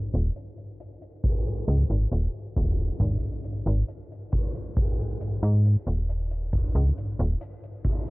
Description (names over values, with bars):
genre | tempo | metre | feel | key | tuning
vaporwave | 68 BPM | 4/4 | straight | unclear | A4 = 439 Hz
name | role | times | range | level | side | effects
slap-like FM bass | bass | 0.1-7.4 s | Eb1 to Ab2 | -22 LUFS | equal | none
hi-hat | drums | 0.1-8.1 s | none | -51 LUFS | left 3 dB | none
kick drum | drums | 1.2-8.0 s | none | -28 LUFS | equal | none
room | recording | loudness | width
little or no reverb | dry, gritty hardware recording, transformer saturation, cassette tape, low-pass filter | -24 LUFS | side -24 dB against mid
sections
0.0-8.1 A section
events
filter sweep 0.0-8.1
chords
none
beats
0.36 1.24 2.12 | 3.00 3.89 4.77 5.65 | 6.53 7.42